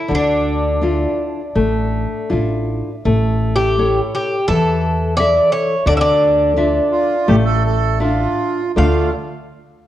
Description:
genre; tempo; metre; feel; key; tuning
fado-style ballad; 83 BPM; 4/4; uneven beats, rubato; D minor; A4 = 441 Hz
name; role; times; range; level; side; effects
Irish bouzouki; melody; 0.0-9.1 s; D4 to F5; -17 LUFS; equal; none
nylon-string guitar; accompaniment; 0.1-9.1 s; D3 to F5; -19 LUFS; left 2 dB; none
upright bass; bass; 0.1-9.1 s; A1 to E2; -20 LUFS; equal; none
accordion; second line; 6.9-9.1 s; F4 to A4; -21 LUFS; right 6 dB; none
room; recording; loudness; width
moderate recital hall reverb, RT60 1.5 s; worn, warbling old tape, cassette tape, warbly pitch drift; -14 LUFS; side -12 dB against mid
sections
0.0-3.0 A section; 3.0-8.8 B section; 8.8-9.9 C section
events
none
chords
0.1 Dmadd9; 3.0 A; 5.9 Dmadd9; 8.8 Dm

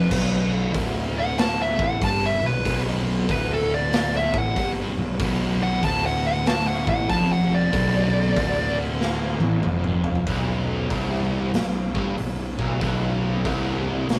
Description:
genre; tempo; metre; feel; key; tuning
stoner and doom metal; 94 BPM; 4/4; swing 64% on 8ths; B minor; A4 = 440 Hz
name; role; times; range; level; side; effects
fuzz lead guitar; melody; 0.0-8.8 s; A4 to A5; -27 LUFS; equal; distortion
thick fuzz guitar; riff; 0.0-14.2 s; B1 to A2; -31 LUFS; equal; distortion
thick fuzz guitar; riff; 0.0-14.2 s; B1 to A2; -29 LUFS; equal; distortion
fuzz picked electric bass; bass; 0.0-14.2 s; B0 to A1; -32 LUFS; equal; overdrive
raw garage drum kit; drums; 0.1-14.2 s; crash cymbal, hi-hat, kick drum, snare drum, toms; -29 LUFS; equal; none
distorted electric guitar; riff; 10.3-14.2 s; B1 to G2; -31 LUFS; equal; overdrive
room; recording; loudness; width
moderate small room reverb, RT60 0.5 s; rough rehearsal-room recording, tube saturation; -23 LUFS; mono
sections
0.0-10.3 A section; 10.3-14.2 B section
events
lead electric guitar solo 0.0-10.3; drum fill 9.0-10.3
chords
0.0 Bm; 10.3 Am9/B (rootless)

